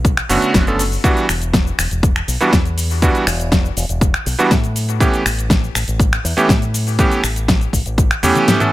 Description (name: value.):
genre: nu-disco, nu disco.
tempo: 121 BPM.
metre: 4/4.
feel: straight.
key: unclear.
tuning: A4 = 438 Hz.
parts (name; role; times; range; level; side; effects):
fingered electric bass with an envelope filter; bass; 0.0-8.3 s; E1 to A2; -20 LUFS; equal; tube saturation.
electronic kick drum; drums; 0.0-8.1 s; none; -16 LUFS; equal; overdrive.
pop drum kit; drums; 0.1-8.7 s; finger snaps, hi-hat, shaker, snare drum, toms; -19 LUFS; left 1 dB; overdrive.
bright electric grand piano; accompaniment; 0.3-8.7 s; D3 to A4; -17 LUFS; right 2 dB; sidechain pumping, ping-pong delay.
room: little or no reverb.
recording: none.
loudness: -13 LUFS.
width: side -16 dB against mid.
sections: 0.0-8.7 A section.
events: drum fill 8.2-8.7; kick drops out 8.5.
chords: 0.0 Bm9; 1.0 Em9; 4.8 A9.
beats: 0.05 0.54 | 1.04 1.53 2.03 2.53 | 3.02 3.52 4.01 4.51 | 5.01 5.50 6.00 6.49 | 6.99 7.49 7.98 8.48.